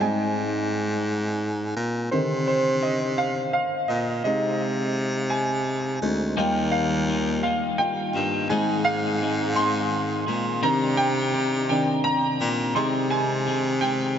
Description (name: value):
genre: six-eight pop ballad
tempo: 56 BPM (dotted quarters)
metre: 6/8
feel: straight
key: unclear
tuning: A4 = 445 Hz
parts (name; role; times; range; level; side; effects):
- warm concert grand piano; accompaniment; 0.0-14.2 s; D3 to C6; -24 LUFS; right 1 dB; analog chorus
- bright baritone saxophone; bass; 0.0-14.2 s; D2 to C3; -26 LUFS; equal; none
- twelve-string electric guitar; arpeggios; 6.4-14.2 s; Ab2 to Ab4; -28 LUFS; left 5 dB; wide subtle chorus, analog delay
room: wet huge ambient reverb, RT60 6.5 s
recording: dreamy mix soaked in reverb, nothing above 7.6 kHz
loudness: -22 LUFS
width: side -8 dB against mid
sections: 0.0-14.2 A section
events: grand piano solo 0.0-14.2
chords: 0.0 Ab; 2.1 Cmadd9; 4.3 Ab/C; 6.4 Ebadd9; 8.5 Ab; 10.6 Cmadd9; 12.8 Ab/C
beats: | 0.00 1.06 | 2.12 3.19 | 4.25 5.32 | 6.38 7.44 | 8.51 9.57 | 10.63 11.70 | 12.76 13.82